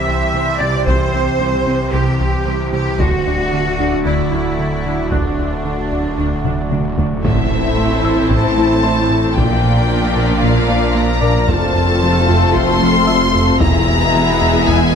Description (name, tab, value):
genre	cinematic, hybrid orchestral and electronic film score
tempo	113 BPM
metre	4/4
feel	straight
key	A phrygian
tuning	A4 = 440 Hz
part	chorused pulse-width pad	sustained chords	0.0-14.9 s	D3 to D5	-22 LUFS	right 1 dB	none
part	clear symphonic cello section	bass	0.0-14.9 s	E2 to E5	-22 LUFS	right 2 dB	none
part	snarling distorted saw bass	bass	0.0-14.9 s	D1 to C2	-24 LUFS	left 1 dB	distortion
part	felt-muted upright piano	texture	0.0-14.9 s	C5 to A6	-29 LUFS	left 5 dB	none
part	warm symphonic viola section	accompaniment	0.1-14.9 s	A3 to F4	-23 LUFS	right 1 dB	none
part	harp-like synth pluck	arpeggios	0.1-14.8 s	C3 to Bb4	-24 LUFS	left 2 dB	chorus, phaser, ping-pong delay
part	round analog bass	riff	0.1-14.8 s	C2 to Bb3	-22 LUFS	right 2 dB	none
part	taiko ensemble	drums	0.9-14.9 s	none	-22 LUFS	left 1 dB	none
part	rich symphonic violin section	melody	7.2-14.9 s	E5 to C6	-19 LUFS	left 3 dB	none
part	clear symphonic violin section	second line	7.2-14.9 s	F4 to E5	-22 LUFS	left 3 dB	none
part	warm French horn section	sustained chords	7.2-14.9 s	G#3 to E4	-22 LUFS	left 5 dB	none
part	rich symphonic double bass section	bass	7.2-14.9 s	E1 to Bb1	-21 LUFS	right 2 dB	none
part	impact	sound effects	7.2-9.4 s	none	-24 LUFS	left 1 dB	none
part	mellow trombone section	sustained chords	7.3-14.9 s	A2 to A3	-25 LUFS	right 5 dB	none
room	moderate scoring stage reverb, RT60 1.9 s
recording	none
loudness	-13 LUFS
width	side -7 dB against mid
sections	0.0-7.2 A section; 7.2-14.9 B section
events	drum fill 6.4-7.2; impact 7.2-9.4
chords	0.0 C; 3.0 D; 7.2 Am; 9.4 Bb; 11.5 F; 13.6 E